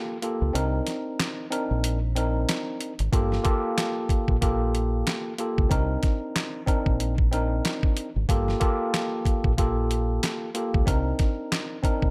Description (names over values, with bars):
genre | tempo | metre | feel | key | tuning
hip hop, boom-bap hip-hop | 93 BPM | 4/4 | swing 60% on 16ths | G minor | A4 = 440 Hz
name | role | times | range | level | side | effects
tine electric piano | accompaniment | 0.0-12.1 s | Bb3 to Bb4 | -30 LUFS | equal | cassette tape, high-pass filter, low-pass filter
boom bap sampler-style drum kit | drums | 0.2-12.1 s | handclaps, hi-hat, kick drum, snare drum | -28 LUFS | equal | none
deep dub fingered electric bass | bass | 0.4-12.1 s | G1 to C#2 | -28 LUFS | equal | none
room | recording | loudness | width
light reverb, digital ambience | none | -25 LUFS | mono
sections
0.0-12.1 A section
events
break 0.0-3.1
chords
0.0 Gm9; 0.5 Cm9; 3.1 Gm9; 5.7 Cm9; 8.3 Gm9; 10.9 Cm9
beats
| 0.55 1.19 1.83 2.48 | 3.12 3.77 4.42 5.06 | 5.71 6.35 7.00 7.64 | 8.29 8.93 9.58 10.22 | 10.87 11.51